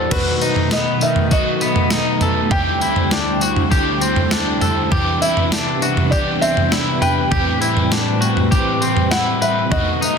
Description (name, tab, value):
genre	dream pop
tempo	100 BPM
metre	4/4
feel	straight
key	unclear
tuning	A4 = 441 Hz
part	felt-muted upright piano	melody	0.0-10.2 s	B4 to G5	-23 LUFS	equal	ping-pong delay
part	crunchy overdriven guitar	accompaniment	0.0-10.2 s	A2 to G4	-22 LUFS	right 2 dB	harmonic tremolo, wide subtle chorus
part	string machine, violas	sustained chords	0.0-10.2 s	C2 to C5	-22 LUFS	equal	ensemble chorus
part	electric guitar at the edge of break-up	arpeggios	0.0-10.2 s	D#3 to B4	-21 LUFS	left 3 dB	wide subtle chorus, ping-pong delay
part	crisp 8-bit digital drum machine	drums	0.1-10.2 s	crash cymbal, kick drum, snare drum, tambourine, toms	-20 LUFS	right 1 dB	none
room	moderate plate reverb, RT60 1.9 s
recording	dense, heavily limited modern master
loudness	-15 LUFS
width	side -6 dB against mid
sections	0.1-10.2 A section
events	none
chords	0.1 B7; 2.5 D7sus4; 4.9 Cmaj7; 7.3 Am7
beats	| 0.12 0.72 1.32 1.92 | 2.52 3.12 3.72 4.32 | 4.92 5.52 6.12 6.72 | 7.32 7.92 8.52 9.12 | 9.72